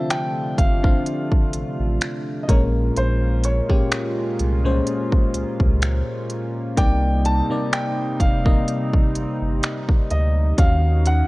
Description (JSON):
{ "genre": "contemporary R&B", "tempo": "63 BPM", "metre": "4/4", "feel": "swing 54% on 16ths", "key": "unclear", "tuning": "A4 = 440 Hz", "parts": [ { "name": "warm concert grand piano", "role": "melody", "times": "0.0-11.3 s", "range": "C5 to A5", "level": "-28 LUFS", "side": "equal", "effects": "none" }, { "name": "FM electric piano", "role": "accompaniment", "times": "0.0-11.3 s", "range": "Bb2 to F5", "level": "-25 LUFS", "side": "left 2 dB", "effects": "chorus" }, { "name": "chorused pulse-width pad", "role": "sustained chords", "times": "0.0-11.3 s", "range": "Bb2 to Gb4", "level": "-28 LUFS", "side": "right 2 dB", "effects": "none" }, { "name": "trap drum kit", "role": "drums", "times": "0.1-11.3 s", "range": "finger snaps, hi-hat, kick drum", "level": "-18 LUFS", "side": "equal", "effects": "none" }, { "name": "saturated sub bass", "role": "bass", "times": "0.6-11.2 s", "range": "F1 to Eb2", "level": "-20 LUFS", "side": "equal", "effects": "none" } ], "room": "little or no reverb", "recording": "worn, warbling old tape, cassette tape, warbly pitch drift", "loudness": "-18 LUFS", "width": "side -21 dB against mid", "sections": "0.0-11.3 A section", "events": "none", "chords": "0.0 Dm9; 2.5 Bbm9; 6.8 Cm9; 10.6 Ebm9" }